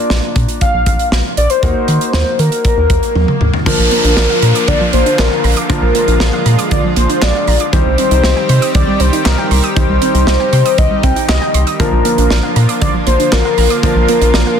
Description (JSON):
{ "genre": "synth-pop", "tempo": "118 BPM", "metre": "4/4", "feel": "straight", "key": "Bb major", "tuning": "A4 = 441 Hz", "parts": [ { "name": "warm velvety synth lead", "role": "melody", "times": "0.0-14.6 s", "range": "Bb4 to G5", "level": "-16 LUFS", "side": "left 1 dB", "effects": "chorus, tape echo" }, { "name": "clear grand piano", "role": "accompaniment", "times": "0.0-14.6 s", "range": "F3 to C5", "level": "-21 LUFS", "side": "left 4 dB", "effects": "none" }, { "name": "rubbery square bass", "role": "bass", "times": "0.1-14.4 s", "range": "Bb1 to Eb3", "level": "-14 LUFS", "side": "equal", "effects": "none" }, { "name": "modern studio drum kit", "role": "drums", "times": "0.1-14.5 s", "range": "crash cymbal, handclaps, hi-hat, kick drum, snare drum, toms", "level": "-17 LUFS", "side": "equal", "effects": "none" }, { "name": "swell and downlifter", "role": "sound effects", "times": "2.4-7.7 s", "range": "none", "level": "-22 LUFS", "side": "left 1 dB", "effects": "none" }, { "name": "lush unison pad", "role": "sustained chords", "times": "3.7-14.6 s", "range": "D3 to G4", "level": "-20 LUFS", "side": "right 1 dB", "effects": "chorus" }, { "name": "soft round pluck", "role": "arpeggios", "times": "3.7-14.6 s", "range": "D3 to Eb6", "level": "-21 LUFS", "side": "right 7 dB", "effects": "chorus, tape echo" } ], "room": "light reverb, small room ambience", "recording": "dense, heavily limited modern master", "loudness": "-10 LUFS", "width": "side -8 dB against mid", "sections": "0.0-3.7 A section; 3.7-14.6 B section", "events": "swell 2.4-3.7; drum fill 3.2-3.7", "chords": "0.0 Bb; 1.6 Ebm; 3.7 Bb; 7.7 Cm; 11.8 Bb" }